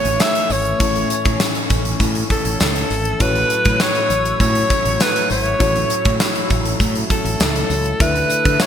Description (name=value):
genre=1980s-style pop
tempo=100 BPM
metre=4/4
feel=straight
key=unclear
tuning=A4 = 440 Hz
part: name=bright alto saxophone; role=melody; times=0.0-8.7 s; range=A4 to E5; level=-20 LUFS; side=equal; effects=ping-pong delay
part: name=FM electric piano with soft pad layer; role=accompaniment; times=0.0-8.7 s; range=A2 to E5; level=-25 LUFS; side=left 3 dB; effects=chorus, tremolo
part: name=phased analog pad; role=sustained chords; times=0.0-8.7 s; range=E3 to A4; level=-27 LUFS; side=left 2 dB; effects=phaser, chorus
part: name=gated 80s drum kit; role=drums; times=0.0-8.7 s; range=hi-hat, kick drum, snare drum, tambourine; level=-19 LUFS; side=equal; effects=none
part: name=mellow fretless electric bass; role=bass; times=0.1-8.6 s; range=G#1 to D3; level=-22 LUFS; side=equal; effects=none
part: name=tambourine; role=percussion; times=0.2-8.7 s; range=none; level=-35 LUFS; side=right 7 dB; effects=none
room=moderate lush hall reverb, RT60 2.4 s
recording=bright 1980s-style digital production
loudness=-15 LUFS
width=side -9 dB against mid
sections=0.0-8.7 A section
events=none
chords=0.0 A; 3.2 F#m7; 8.0 Dsus2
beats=0.20 | 0.80 1.40 2.00 2.60 | 3.20 3.80 4.40 5.00 | 5.60 6.20 6.80 7.40 | 8.00 8.60